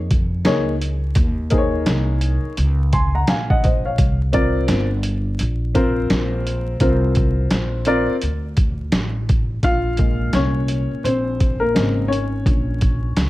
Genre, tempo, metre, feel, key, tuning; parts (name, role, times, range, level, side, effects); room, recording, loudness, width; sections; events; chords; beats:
hip hop, jazz-hop; 85 BPM; 4/4; swing 61% on 16ths; Bb minor; A4 = 440 Hz
upright bass; bass; 0.0-13.3 s; G1 to F2; -21 LUFS; equal
boom bap sampler-style drum kit; drums; 0.1-13.3 s; hi-hat, kick drum, snare drum; -20 LUFS; equal
dark upright piano; accompaniment; 0.4-13.3 s; Bb2 to C6; -21 LUFS; left 1 dB
small room ambience; dark, warm production, vinyl crackle; -17 LUFS; side -17 dB against mid
0.0-9.6 A section; 9.6-13.3 B section
upright piano solo 9.6-13.3
0.0 Eb9sus4; 4.0 C9sus4; 9.6 Bbm9
0.46 | 1.16 1.87 2.58 3.28 | 3.99 4.69 5.40 6.10 | 6.81 7.52 8.22 8.93 | 9.63 10.34 11.04 11.75 | 12.46 13.16